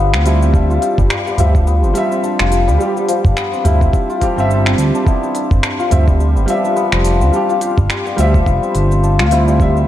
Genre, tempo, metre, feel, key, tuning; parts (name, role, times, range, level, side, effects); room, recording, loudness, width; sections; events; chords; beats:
organic downtempo; 106 BPM; 4/4; swing 57% on 16ths; G mixolydian; A4 = 440 Hz
felt-muted upright piano; accompaniment; 0.0-9.9 s; G3 to E5; -20 LUFS; right 2 dB; sidechain pumping, digital delay
santur; arpeggios; 0.0-9.9 s; F3 to G4; -18 LUFS; left 4 dB; digital delay
smooth synth bass; bass; 0.0-9.8 s; F1 to D2; -14 LUFS; equal
organic electronic drum kit; drums; 0.1-9.9 s; finger snaps, hi-hat, shaker; -22 LUFS; equal; overdrive
electronic kick drum; drums; 0.5-9.7 s; -15 LUFS; equal; overdrive
udu; percussion; 1.0-7.9 s; -19 LUFS; right 2 dB
moderate lush hall reverb, RT60 1.6 s, small room ambience; dark, warm production; -12 LUFS; side -12 dB against mid
0.0-9.9 A section
0.0 G7sus4
| 0.54 1.10 1.67 2.23 | 2.80 3.37 3.93 4.50 | 5.07 5.63 6.20 6.76 | 7.33 7.90 8.46 9.03 | 9.59